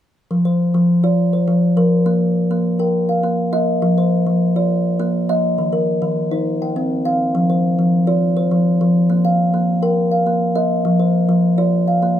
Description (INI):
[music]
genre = southern african traditional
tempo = 137 BPM (dotted quarters)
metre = 12/8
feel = straight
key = F equiheptatonic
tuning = A4 = 440 Hz
[part]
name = kalimba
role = arpeggios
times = 0.3-12.2 s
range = Eb3+29c to G5-29c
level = -14 LUFS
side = equal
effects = none
[sound]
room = light reverb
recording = none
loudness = -14 LUFS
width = side -10 dB against mid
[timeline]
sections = 0.3-12.2 A section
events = none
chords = 0.3 F5; 2.1 Bb5; 3.8 F5; 4.7 Bb; 5.6 Eb5; 6.5 C5; 7.3 F5; 9.1 Bb5; 10.8 F5